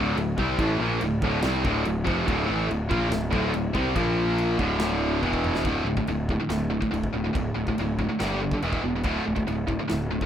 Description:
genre	heavy metal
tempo	142 BPM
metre	4/4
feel	straight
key	D minor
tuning	A4 = 435 Hz
part	raw garage guitar	riff	0.0-5.6 s	D2 to C4	-30 LUFS	left 1 dB	overdrive
part	tight distorted guitar	riff	0.0-10.3 s	D2 to C4	-26 LUFS	equal	distortion
part	fuzz picked electric bass	bass	0.0-10.2 s	D1 to C2	-28 LUFS	equal	overdrive
part	big rock drum kit	drums	0.2-10.3 s	china cymbal, kick drum, snare drum, toms	-32 LUFS	equal	none
room	studio reverb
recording	rough home demo mix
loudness	-23 LUFS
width	side -9 dB against mid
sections	0.0-5.7 A section; 5.7-10.3 B section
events	drum fill 5.2-5.7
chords	0.0 Dm; 4.0 Bb5; 4.6 D5; 5.2 E5; 5.7 D5; 8.2 G5; 8.6 E5; 9.0 D5

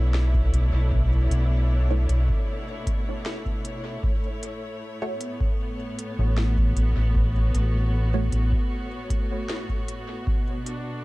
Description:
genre	ambient dub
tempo	77 BPM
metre	4/4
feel	straight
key	unclear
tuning	A4 = 441 Hz
part	clear symphonic string section	sustained chords	0.0-11.0 s	A2 to C#5	-32 LUFS	equal	none
part	fingered electric bass	bass	0.0-8.5 s	A1 to B1	-20 LUFS	equal	tube saturation
part	organic electronic drum kit	drums	0.1-10.8 s	hi-hat, snare drum	-36 LUFS	equal	dub echo
part	electronic kick drum	drums	0.3-10.4 s	none	-26 LUFS	equal	none
part	filtered dub chord stab	stabs	1.9-8.4 s	A3 to C#5	-34 LUFS	right 3 dB	phaser, wide subtle chorus, dub echo
room	little or no reverb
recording	dark, warm production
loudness	-22 LUFS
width	side -20 dB against mid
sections	0.0-11.0 A section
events	filter sweep on synth stab 0.0-11.0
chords	0.0 Bm11; 4.0 A6; 10.3 Bm

